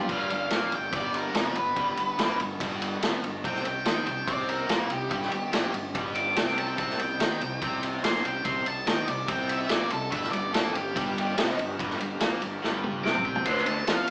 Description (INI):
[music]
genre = blues rock power trio and southern rock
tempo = 144 BPM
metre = 4/4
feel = straight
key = unclear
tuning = A4 = 440 Hz
[part]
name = octave-fuzz lead guitar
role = melody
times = 0.0-14.1 s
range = E#4 to D6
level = -33 LUFS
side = equal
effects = distortion
[part]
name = overdriven tonewheel organ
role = sustained chords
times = 0.0-0.1, 10.1-14.1 s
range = C4 to C5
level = -45 LUFS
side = equal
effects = none
[part]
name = distorted electric guitar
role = riff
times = 0.0-14.1 s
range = F2 to E#4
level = -35 LUFS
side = equal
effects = overdrive
[part]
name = fuzz fingered electric bass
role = bass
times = 0.0-14.1 s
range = F1 to E#2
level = -38 LUFS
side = equal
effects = overdrive
[part]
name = vintage drum kit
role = drums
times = 0.1-14.1 s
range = crash cymbal, kick drum, ride cymbal, snare drum, toms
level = -31 LUFS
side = equal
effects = none
[sound]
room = moderate large studio reverb, RT60 1.1 s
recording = band playing live in one room, small speaker sound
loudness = -28 LUFS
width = mono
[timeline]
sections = 0.1-14.1 A section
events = lead electric guitar solo 0.1-14.1; drum fill 12.6-13.5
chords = 0.1 G7#9; 3.4 Cm7; 5.1 Gm; 6.8 Cm7; 10.1 G7#9; 13.5 D7#9